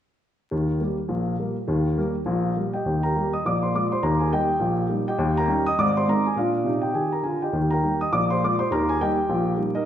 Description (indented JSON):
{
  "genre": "jazz, stride piano",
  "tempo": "205 BPM",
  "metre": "4/4",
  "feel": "swing 58% on 8ths",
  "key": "Eb major",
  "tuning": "A4 = 440 Hz",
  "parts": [
    { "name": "warm upright piano", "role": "solo", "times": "0.5-9.9 s", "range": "Ab1 to Eb6", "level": "-21 LUFS", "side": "equal", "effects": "none" }
  ],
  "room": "wet recital hall reverb, RT60 1.3 s",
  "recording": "recorded in a church or concert hall, vinyl crackle",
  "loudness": "-21 LUFS",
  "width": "side -10 dB against mid",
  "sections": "0.5-2.8 A section; 2.8-9.9 B section",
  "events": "none",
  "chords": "0.5 Eb; 3.4 Bb7; 4.0 Eb; 5.2 Eb7; 5.8 Ab; 6.4 Bb; 7.5 Eb; 8.1 Bb7; 8.7 Eb"
}